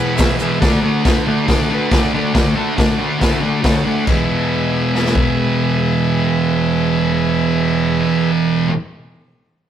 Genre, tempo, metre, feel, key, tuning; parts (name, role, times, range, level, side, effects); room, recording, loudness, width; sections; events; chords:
garage rock duo or trio; 139 BPM; 4/4; straight; E mixolydian; A4 = 441 Hz
combo organ; sustained chords; 0.0-8.3 s; F#4 to A5; -23 LUFS; equal
thick fuzz guitar; riff; 0.0-8.7 s; E2 to D4; -16 LUFS; right 1 dB; distortion
vintage drum kit; drums; 0.2-5.3 s; crash cymbal, hi-hat, kick drum, snare drum; -18 LUFS; equal
tube shaker; percussion; 0.2-0.5 s; -34 LUFS; right 4 dB
moderate stone room reverb, RT60 1.3 s; rough rehearsal-room recording; -14 LUFS; side -9 dB against mid
0.0-4.1 A section; 4.1-7.5 B section
transistor combo organ fill 3.4-4.1
0.0 E; 0.6 D; 4.1 E